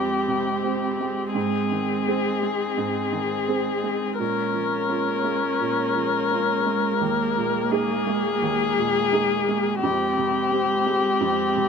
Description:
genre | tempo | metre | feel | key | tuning
neoclassical piano and strings | 85 BPM | 4/4 | rubato | F minor | A4 = 438 Hz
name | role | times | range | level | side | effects
muted violin | melody | 0.0-11.7 s | G4 to Bb4 | -23 LUFS | left 6 dB | none
muted cello | second line | 0.0-11.7 s | Ab3 | -31 LUFS | right 8 dB | none
felt-muted upright piano | accompaniment | 0.0-11.7 s | Eb2 to Ab4 | -28 LUFS | right 6 dB | none
muted viola | accompaniment | 0.0-11.7 s | Bb3 to Db4 | -30 LUFS | right 1 dB | none
warbly tape-like pad | sustained chords | 0.6-11.7 s | Ab3 to G5 | -35 LUFS | right 2 dB | chorus, built-in reverb
room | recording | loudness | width
light reverb | minimal, uncompressed stereo recording | -21 LUFS | side -6 dB against mid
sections
0.0-11.7 A section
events
none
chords
0.0 Fmadd9; 1.4 Ab; 4.2 Bbm7; 7.0 Ebsus4; 9.8 Fmadd9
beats
0.64 | 1.35 2.07 2.78 3.49 | 4.20 4.90 5.61 6.32 | 7.02 7.72 8.42 9.12 | 9.82 10.51 11.21

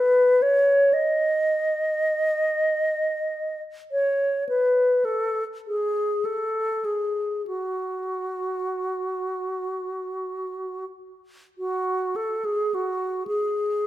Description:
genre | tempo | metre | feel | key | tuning
classical, free, expressive piece for unaccompanied alto flute | 22-40 BPM (dotted quarters) | 6/8 | rubato | F# dorian | A4 = 442 Hz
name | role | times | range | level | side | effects
bright alto flute | solo | 0.0-13.9 s | F#4 to D#5 | -22 LUFS | equal | none
room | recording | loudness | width
wet recital hall reverb, RT60 1.7 s | none | -22 LUFS | side -14 dB against mid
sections
0.0-11.6 A section; 11.6-13.9 A section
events
none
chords
none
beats
| 0.93 2.42 | 3.94 5.66 | 7.46 9.37 | 11.60 13.27

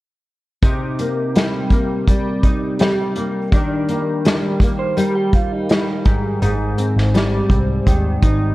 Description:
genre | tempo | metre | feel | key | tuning
indie pop, bedroom pop | 83 BPM | 4/4 | straight | C minor | A4 = 440 Hz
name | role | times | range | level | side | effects
nylon-string guitar | accompaniment | 0.6-8.5 s | Ab2 to Eb4 | -18 LUFS | equal | analog chorus, vibrato effect
unplugged drum kit | drums | 0.6-8.4 s | hi-hat, kick drum, snare drum | -17 LUFS | equal | none
electric guitar through a small old amp | second line | 4.8-6.0 s | Eb4 to C5 | -26 LUFS | right 4 dB | wide subtle chorus, analog delay
vintage muted picked electric bass | bass | 6.4-8.5 s | Ab1 to Eb2 | -20 LUFS | equal | none
room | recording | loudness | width
studio reverb | worn, warbling old tape, cassette tape, warbly pitch drift | -15 LUFS | side -18 dB against mid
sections
0.6-8.5 A section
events
none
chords
0.6 Cm7; 3.5 Ebmaj7; 6.1 Abmaj7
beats
| 0.62 1.35 2.07 2.80 | 3.52 4.25 4.97 5.70 | 6.42 7.14 7.87

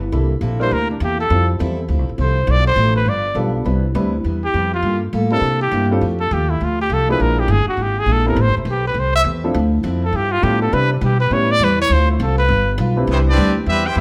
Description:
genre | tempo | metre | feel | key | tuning
jazz | 204 BPM | 4/4 | swing 62% on 8ths | C major from 3.7 s | A4 = 441 Hz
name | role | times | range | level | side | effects
picked steel-string acoustic guitar | accompaniment | 0.0-14.0 s | G2 to B4 | -27 LUFS | equal | none
upright bass | bass | 0.0-14.0 s | E1 to C3 | -21 LUFS | equal | none
warm baby grand piano | accompaniment | 0.1-13.3 s | F3 to B4 | -26 LUFS | equal | none
warm trumpet | melody | 0.6-12.8 s | D4 to E5 | -21 LUFS | equal | none
brilliant trumpet section | melody | 13.1-14.0 s | G3 to G5 | -21 LUFS | equal | none
warm trombone section | second line | 13.1-14.0 s | E3 to G4 | -26 LUFS | equal | none
room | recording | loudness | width
moderate large studio reverb, RT60 1.2 s | none | -17 LUFS | mono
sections
0.0-3.7 A section; 3.7-13.1 A section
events
trumpet solo 0.0-3.7, 3.7-13.1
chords
0.1 C13; 1.3 Fmaj7; 2.5 Bm7b5; 3.1 G7; 3.7 Cmaj7; 4.8 Gm9; 6.0 F69; 7.2 Bb7#11; 8.4 Am9; 9.5 Dm9; 10.1 G13; 10.7 Cmaj7; 11.3 A7; 11.9 Dm7; 12.5 G7; 13.1 Cmaj7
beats
| 0.12 0.42 0.71 1.01 | 1.30 1.59 1.89 2.18 | 2.48 2.77 3.07 3.36 | 3.66 3.95 4.25 4.54 | 4.84 5.13 5.43 5.72 | 6.02 6.31 6.61 6.90 | 7.20 7.49 7.78 8.08 | 8.37 8.67 8.96 9.26 | 9.55 9.84 10.14 10.43 | 10.72 11.02 11.31 11.60 | 11.90 12.19 12.48 12.78 | 13.07 13.36 13.66 13.95

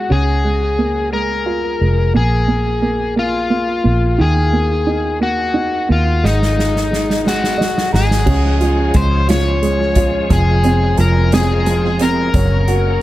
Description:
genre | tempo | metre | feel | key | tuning
six-eight pop ballad | 59 BPM (dotted quarters) | 6/8 | straight | Db major | A4 = 440 Hz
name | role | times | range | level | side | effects
overdriven slide guitar | melody | 0.0-13.0 s | Eb4 to Db5 | -18 LUFS | left 3 dB | tape echo
warm baby grand piano | accompaniment | 0.0-13.0 s | Db3 to Bb5 | -20 LUFS | right 3 dB | tape echo
vintage muted fingered electric bass | bass | 0.1-13.0 s | F1 to Eb2 | -17 LUFS | equal | none
natural country drum kit | drums | 6.3-12.8 s | crash cymbal, hi-hat, kick drum, snare drum | -20 LUFS | equal | tape echo
bright tonewheel organ | sustained chords | 8.3-13.0 s | F3 to Db4 | -24 LUFS | right 1 dB | chorus vibrato, slow rotary speaker
room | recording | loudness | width
light reverb, small room ambience | echo-heavy mix | -13 LUFS | side -15 dB against mid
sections
0.0-8.3 A section; 8.3-13.0 B section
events
drum fill 6.2-8.3; grand piano fill 7.2-8.3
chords
0.1 Db6; 2.1 Bb5; 4.2 Ebm; 6.2 Ab5; 8.3 Db; 10.3 Fm; 12.3 Gb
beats
| 0.10 1.13 | 2.15 3.17 | 4.19 5.21 | 6.23 7.25 | 8.27 9.29 | 10.30 11.32 | 12.34

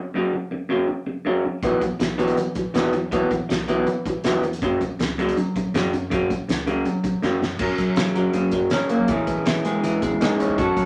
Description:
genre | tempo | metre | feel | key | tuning
indie rock | 161 BPM | 4/4 | straight | unclear | A4 = 439 Hz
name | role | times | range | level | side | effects
electric guitar through a small old amp | riff | 0.0-10.9 s | F#2 to D#4 | -24 LUFS | equal | none
growling fingered electric bass | bass | 1.6-10.9 s | B1 to F#3 | -32 LUFS | equal | overdrive
loose indie drum kit | drums | 1.6-10.9 s | crash cymbal, hi-hat, kick drum, snare drum | -29 LUFS | equal | none
electric guitar through a small old amp | riff | 7.6-10.9 s | E2 to A#4 | -29 LUFS | equal | none
combo organ | sustained chords | 10.6-10.9 s | A4 to C#6 | -29 LUFS | equal | none
room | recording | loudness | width
wet small room reverb, RT60 0.5 s | none | -22 LUFS | mono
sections
0.0-7.6 A section; 7.6-10.9 B section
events
drum fill 7.2-7.6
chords
0.0 F#5; 1.6 Esus2; 4.6 F#5; 7.6 F#; 9.1 C#madd9/E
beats
| 0.14 0.51 0.89 1.26 | 1.63 2.01 2.38 2.76 | 3.13 3.50 3.88 4.25 | 4.63 5.00 5.37 5.75 | 6.12 6.49 6.86 7.24 | 7.61 7.98 8.35 8.72 | 9.10 9.47 9.84 10.21 | 10.58

